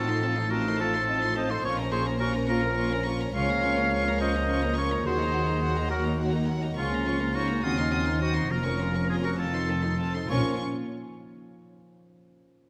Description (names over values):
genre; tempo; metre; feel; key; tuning
cinematic; 70 BPM (dotted quarters); 6/8; straight; Bb minor; A4 = 443 Hz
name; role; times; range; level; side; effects
warm chamber violin section; melody; 0.0-10.6 s; Gb5 to Eb6; -40 LUFS; equal; none
clear oboe; second line; 0.0-10.6 s; F4 to F5; -32 LUFS; equal; none
mellow clarinet; second line; 0.0-10.6 s; Db4 to Db5; -38 LUFS; equal; none
warm chamber violin section; second line; 0.0-10.6 s; Db4 to Bb4; -40 LUFS; equal; none
warm chamber viola section; accompaniment; 0.0-10.6 s; Gb3 to Eb4; -37 LUFS; equal; none
mellow French horn section; sustained chords; 0.0-10.6 s; Eb3 to Eb4; -39 LUFS; equal; none
concert harp; arpeggios; 0.0-12.1 s; A2 to F5; -38 LUFS; equal; none
dark chamber cello section; bass; 0.0-10.6 s; Db2 to Bb2; -37 LUFS; equal; none
dark chamber double bass section; bass; 0.0-10.6 s; F1 to Eb2; -34 LUFS; equal; none
room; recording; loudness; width
wet scoring stage reverb, RT60 2.0 s; none; -27 LUFS; mono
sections
0.0-10.3 A section; 10.3-12.1 B section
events
none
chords
0.0 F7/A; 1.6 Bbm; 3.4 Bbm/Db; 5.1 Ebm; 6.8 Bbm/Db; 7.6 Cdim/Eb; 8.5 Bbm/F; 9.4 F7; 10.3 Bbm